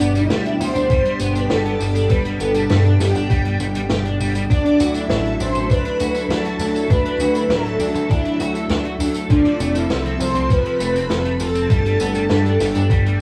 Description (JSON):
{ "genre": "synthwave", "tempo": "100 BPM", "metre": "4/4", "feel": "straight", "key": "unclear", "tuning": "A4 = 440 Hz", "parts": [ { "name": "mellow synth brass", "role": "melody", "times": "0.0-13.2 s", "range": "D4 to C5", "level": "-24 LUFS", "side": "equal", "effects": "chorus, cassette tape, tape echo" }, { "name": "string machine, violins", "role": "second line", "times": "0.0-13.2 s", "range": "D5 to C6", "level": "-36 LUFS", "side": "equal", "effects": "ensemble chorus, vintage 12-bit sampler grit, cassette tape, tape echo" }, { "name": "lush unison pad", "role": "sustained chords", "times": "0.0-13.2 s", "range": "B2 to A4", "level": "-26 LUFS", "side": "equal", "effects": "chorus, sidechain pumping, cassette tape" }, { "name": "overdriven electric guitar", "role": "riff", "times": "0.0-13.2 s", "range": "F3 to A4", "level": "-30 LUFS", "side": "equal", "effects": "ensemble chorus, cassette tape, analog delay" }, { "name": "chorused synth bass", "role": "bass", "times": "0.0-13.2 s", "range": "D1 to G2", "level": "-24 LUFS", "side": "equal", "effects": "none" }, { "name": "open jazz drum kit", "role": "drums", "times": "0.0-13.2 s", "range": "hi-hat, snare drum, tambourine", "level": "-29 LUFS", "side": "equal", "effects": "none" }, { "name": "electronic kick drum", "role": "drums", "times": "0.9-13.0 s", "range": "none", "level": "-19 LUFS", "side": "equal", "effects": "none" } ], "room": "moderate studio reverb, RT60 0.5 s", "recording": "home recording on cassette, small room ambience", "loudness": "-18 LUFS", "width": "mono", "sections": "0.0-13.2 A section", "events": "none", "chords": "0.0 G; 4.5 Dadd9; 9.3 F; 11.7 Gsus2", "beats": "0.30 0.90 1.50 | 2.10 2.70 3.30 3.90 | 4.50 5.10 5.70 6.30 | 6.90 7.50 8.10 8.70 | 9.30 9.90 10.50 11.10 | 11.70 12.30 12.90" }